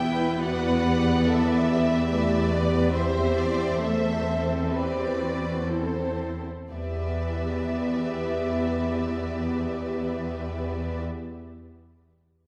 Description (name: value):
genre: cinematic, emotional film score for orchestra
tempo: 57-72 BPM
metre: 4/4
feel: rubato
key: E minor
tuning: A4 = 442 Hz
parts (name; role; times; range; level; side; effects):
- warm symphonic violin section; melody; 0.0-11.0 s; C5 to G5; -34 LUFS; equal; none
- rich symphonic violin section; second line; 0.0-11.0 s; A4 to E5; -35 LUFS; equal; none
- rich symphonic viola section; accompaniment; 0.0-11.0 s; A3 to A4; -30 LUFS; equal; none
- rich symphonic cello section; bass; 0.0-11.0 s; E2; -31 LUFS; equal; none
room: wet scoring stage reverb, RT60 1.8 s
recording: heard from further back in the room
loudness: -26 LUFS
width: mono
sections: 0.0-6.7 A section; 6.7-10.8 B section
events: slowing down 0.0-6.7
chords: 0.0 Em7; 2.9 Cmaj7/E; 6.7 Em7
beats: 0.43 1.26 2.10 | 2.94 3.81 4.71 5.68 | 6.71 7.73 8.75 9.77